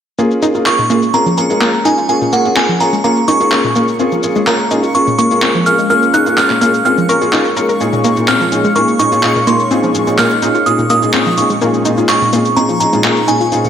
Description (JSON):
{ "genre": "progressive house", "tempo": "126 BPM", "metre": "4/4", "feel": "straight", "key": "Bb minor", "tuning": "A4 = 440 Hz", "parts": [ { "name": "warm analog pad", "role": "sustained chords", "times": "0.2-13.7 s", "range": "Bb2 to F5", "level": "-22 LUFS", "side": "equal", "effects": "chorus" }, { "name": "analog pluck", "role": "arpeggios", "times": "0.2-13.7 s", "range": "Bb2 to Bb4", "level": "-16 LUFS", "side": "equal", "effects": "chorus, dub echo" }, { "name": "felt-muted upright piano", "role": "stabs", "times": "0.2-13.7 s", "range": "Bb2 to Ab4", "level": "-16 LUFS", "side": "equal", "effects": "dub echo" }, { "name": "electronic cabasa and handclaps", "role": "drums", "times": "0.2-13.7 s", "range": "none", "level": "-19 LUFS", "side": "left 1 dB", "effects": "overdrive, low-pass filter on perc, low-pass filter on snare, low-pass filter on room" }, { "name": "backwards swelling texture", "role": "texture", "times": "1.3-13.7 s", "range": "Db6", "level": "-26 LUFS", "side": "left 2 dB", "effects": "built-in reverb" }, { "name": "glassy synth bell", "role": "melody", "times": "0.7-13.7 s", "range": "Gb5 to Gb6", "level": "-15 LUFS", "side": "right 1 dB", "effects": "chorus, dub echo" } ], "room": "moderate lush hall reverb, RT60 1.9 s", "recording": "none", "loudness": "-10 LUFS", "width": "side -9 dB against mid", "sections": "0.2-13.7 A section", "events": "none", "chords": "0.2 Bbm7" }